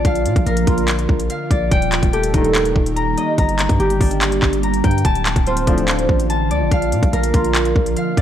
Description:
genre	hip hop, trap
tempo	144 BPM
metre	4/4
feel	half-time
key	unclear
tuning	A4 = 438 Hz
part	ethereal airy pad	sustained chords	0.0-8.2 s	D3 to G4	-24 LUFS	right 3 dB	ensemble chorus, built-in reverb
part	concert harp	arpeggios	0.0-8.2 s	D4 to Bb5	-21 LUFS	left 3 dB	low-pass filter, digital delay
part	distorted 808-style bass	bass	0.0-8.2 s	D1 to Bb2	-20 LUFS	equal	distortion
part	trap drum kit	drums	0.0-8.2 s	handclaps, hi-hat, kick drum	-18 LUFS	equal	vintage 12-bit sampler grit
part	warm velvety synth lead	second line	0.5-7.9 s	G4 to C5	-23 LUFS	right 3 dB	chorus, tremolo, digital delay
part	mellow brass ensemble	stabs	2.3-2.7, 5.7-6.1 s	G2 to F3	-25 LUFS	left 4 dB	digital delay
room	light reverb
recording	none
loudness	-14 LUFS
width	side -10 dB against mid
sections	0.0-8.2 A section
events	none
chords	0.0 Bb; 1.7 Eb; 3.4 Gm; 5.0 Dm; 6.7 Bb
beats	| 0.05 0.47 0.88 1.30 | 1.72 2.13 2.55 2.96 | 3.38 3.80 4.21 4.63 | 5.05 5.46 5.88 6.30 | 6.71 7.13 7.55 7.96

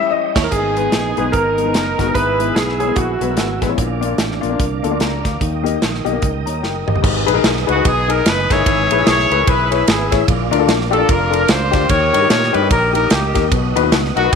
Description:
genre	uptempo gospel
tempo	148 BPM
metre	4/4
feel	swing 60% on 8ths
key	G# minor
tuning	A4 = 440 Hz
part	warm upright piano	accompaniment	0.0-14.4 s	G#2 to D6	-19 LUFS	left 12 dB	none
part	dark French horn section	sustained chords	0.0-7.0 s	D3 to E4	-30 LUFS	right 12 dB	none
part	tonewheel organ	sustained chords	0.0-14.4 s	B3 to E6	-26 LUFS	right 11 dB	slow rotary speaker, chorus vibrato
part	clear concert grand piano	melody	0.4-3.6 s	F#4 to B4	-21 LUFS	right 4 dB	slapback echo
part	clean electric guitar	second line	0.4-0.5 s	E4 to C#5	-28 LUFS	right 11 dB	none
part	fingered electric bass	bass	0.4-14.4 s	E#1 to A#2	-22 LUFS	right 2 dB	none
part	modern studio drum kit	drums	0.4-14.4 s	crash cymbal, hi-hat, kick drum, ride cymbal, snare drum, toms	-19 LUFS	right 1 dB	none
part	clear horn section	melody	0.5-3.7, 7.7-14.4 s	A#3 to C#5	-18 LUFS	left 1 dB	none
room	moderate plate reverb, RT60 1.8 s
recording	1960s-style stereo with parts hard left and right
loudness	-13 LUFS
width	side -6 dB against mid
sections	0.5-7.0 A section; 7.0-14.4 B section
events	band accent 0.0-0.5; drum fill 6.6-7.0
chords	0.0 D#7b9; 0.5 G#m; 2.1 E/G#; 3.8 A#; 5.4 D#; 7.0 G#m; 8.7 E/G#; 10.3 A#; 11.9 D#; 13.5 B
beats	0.11 | 0.52 0.93 1.33 1.74 | 2.15 2.56 2.97 3.37 | 3.78 4.19 4.60 5.00 | 5.41 5.82 6.23 6.63 | 7.04 7.45 7.85 8.26 | 8.66 9.06 9.47 9.88 | 10.28 10.68 11.09 11.49 | 11.90 12.30 12.71 13.11 | 13.52 13.92 14.33

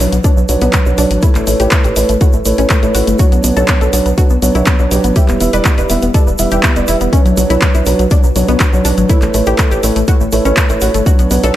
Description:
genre	progressive house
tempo	122 BPM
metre	4/4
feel	straight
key	B minor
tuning	A4 = 440 Hz
part	tight sequenced synth	arpeggios	0.0-11.5 s	F#3 to B4	-19 LUFS	left 2 dB	chorus, sidechain pumping, tape echo
part	felt-muted upright piano	stabs	0.0-11.6 s	F#3 to E5	-15 LUFS	right 2 dB	sidechain pumping, tape echo
part	round analog bass	bass	0.0-11.5 s	E1 to B1	-16 LUFS	equal	sidechain pumping
part	house drum kit	drums	0.0-11.5 s	handclaps, hi-hat	-19 LUFS	left 1 dB	studio reverb
part	egg shaker	percussion	0.0-11.5 s	none	-25 LUFS	right 3 dB	none
part	electronic kick drum	drums	0.2-11.2 s	none	-12 LUFS	equal	studio reverb
room	light reverb, digital ambience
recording	faint mains hum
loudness	-9 LUFS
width	side -13 dB against mid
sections	0.0-11.6 A section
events	none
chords	0.0 Bmadd9; 1.2 Aadd9; 3.2 Bmadd9; 5.2 Em; 7.1 Bmadd9; 9.1 Aadd9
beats	0.24 0.73 | 1.23 1.72 2.21 2.70 | 3.19 3.69 4.18 4.67 | 5.16 5.65 6.14 6.64 | 7.13 7.62 8.11 8.60 | 9.10 9.59 10.08 10.57 | 11.06 11.55

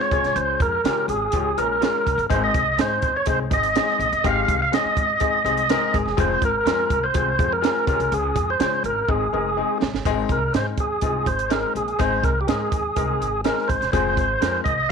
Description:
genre	uptempo 1960s-style soul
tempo	124 BPM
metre	4/4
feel	straight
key	Ab major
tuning	A4 = 441 Hz
part	tonewheel organ	melody	0.0-14.9 s	G4 to F5	-21 LUFS	right 2 dB	fast rotary speaker
part	clear baby grand piano	accompaniment	0.0-14.9 s	Ab3 to Bb4	-27 LUFS	left 14 dB	none
part	compact cocktail drum kit	drums	0.0-14.8 s	hi-hat, kick drum, snare drum	-25 LUFS	right 4 dB	none
part	upright bass	bass	0.1-14.8 s	Fb1 to Db3	-28 LUFS	equal	none
room	light reverb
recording	1960s-style stereo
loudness	-19 LUFS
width	side -6 dB against mid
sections	0.0-10.1 A section; 10.1-14.9 B section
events	drum fill 9.1-10.1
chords	0.1 Db; 2.3 Ab; 6.2 Fm; 7.9 Db; 9.1 Ab; 13.9 Fm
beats	| 0.36 0.85 1.34 1.82 | 2.31 2.79 3.27 3.76 | 4.24 4.73 5.21 5.70 | 6.18 6.67 7.15 7.63 | 8.12 8.60 9.09 9.57 | 10.05 10.54 11.02 11.51 | 11.99 12.48 12.96 13.45 | 13.93 14.41 14.90

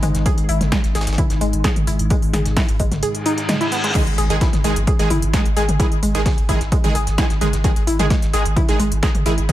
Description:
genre	driving peak-time techno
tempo	130 BPM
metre	4/4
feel	straight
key	unclear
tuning	A4 = 440 Hz
part	analog pluck	riff	0.0-9.5 s	G#3 to G#4	-24 LUFS	equal	chorus, tube saturation, sidechain pumping, dub echo
part	saturated sub bass	bass	0.0-9.5 s	G#1	-21 LUFS	equal	overdrive, sidechain pumping, low-pass filter
part	analog drone	drone	0.0-4.0 s	G#2 to D#3	-28 LUFS	left 1 dB	chorus, sidechain pumping
part	breakbeat sampler-style drum kit	drums	0.0-9.5 s	hi-hat, snare drum	-34 LUFS	right 1 dB	high-pass filter on snare, sidechain pumping on hats, high-pass filter on hats
part	techno drum kit	drums	0.0-9.5 s	crash cymbal, hi-hat, snare drum, toms	-24 LUFS	left 1 dB	sidechain pumping on hats, sidechain pumping on toms, sidechain pumping on cymbals
part	electronic kick drum	drums	0.3-9.5 s	none	-19 LUFS	equal	none
part	reverse cymbal and impact	sound effects	3.2-5.8 s	none	-26 LUFS	equal	none
part	supersaw stab	stabs	4.0-9.5 s	D#3 to G#4	-23 LUFS	right 2 dB	sidechain pumping, ping-pong delay
room	little or no reverb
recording	none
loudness	-16 LUFS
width	side -14 dB against mid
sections	0.0-4.0 A section; 4.0-9.5 B section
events	reverse cymbal 3.2-4.0; drop 4.0-9.5; impact 4.0-5.8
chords	0.0 G#5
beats	| 0.26 0.72 1.18 1.64 | 2.10 2.57 3.03 3.49 | 3.95 4.41 4.87 5.33 | 5.80 6.26 6.72 7.18 | 7.64 8.10 8.57 9.03 | 9.49

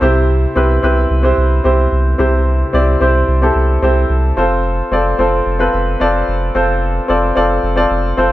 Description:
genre	piano-driven pop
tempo	110 BPM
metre	4/4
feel	straight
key	unclear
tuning	A4 = 440 Hz
part	clear baby grand piano	accompaniment	0.0-8.3 s	C3 to D5	-14 LUFS	equal	plate reverb
part	warm sub bass	bass	0.0-8.3 s	F1 to C2	-15 LUFS	equal	none
room	moderate studio reverb, RT60 0.7 s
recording	none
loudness	-12 LUFS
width	side -15 dB against mid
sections	0.0-8.3 A section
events	none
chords	0.0 C; 4.4 F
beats	| 0.02 0.56 1.11 1.65 | 2.19 2.74 3.28 3.83 | 4.37 4.92 5.46 6.00 | 6.55 7.09 7.64 8.18

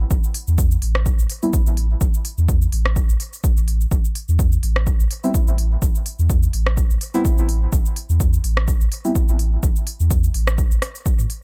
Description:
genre	dub techno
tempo	126 BPM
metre	4/4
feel	swing 55% on 16ths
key	A minor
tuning	A4 = 440 Hz
part	warm sub bass	bass	0.0-11.3 s	A1 to A2	-21 LUFS	equal	sidechain pumping
part	deep house drum kit	drums	0.1-11.4 s	cabasa, hi-hat, rim click	-31 LUFS	equal	none
part	electronic kick drum	drums	0.1-11.2 s	none	-21 LUFS	equal	none
part	deep mellow chord stab	stabs	1.4-1.5, 5.2-9.1 s	G3 to E4	-26 LUFS	equal	chorus, phaser, sidechain pumping, dub echo
room	digital ambience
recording	none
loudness	-19 LUFS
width	mono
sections	0.0-11.4 A section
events	none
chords	0.0 A5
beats	| 0.11 0.58 1.06 1.53 | 2.01 2.49 2.96 3.44 | 3.92 4.39 4.87 5.34 | 5.82 6.30 6.77 7.25 | 7.72 8.20 8.68 9.15 | 9.63 10.11 10.58 11.06

